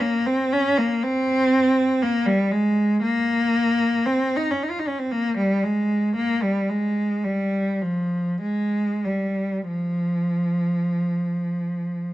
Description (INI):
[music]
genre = classical, free, expressive piece for unaccompanied cello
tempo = 47-62 BPM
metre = 3/4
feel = rubato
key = F minor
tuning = A4 = 440 Hz
[part]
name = rich cello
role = solo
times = 0.0-12.1 s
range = F3 to F4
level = -20 LUFS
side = equal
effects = none
[sound]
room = moderate stone room reverb, RT60 1.3 s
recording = dark, warm production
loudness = -20 LUFS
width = side -15 dB against mid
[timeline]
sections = 0.0-12.1 A section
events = none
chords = none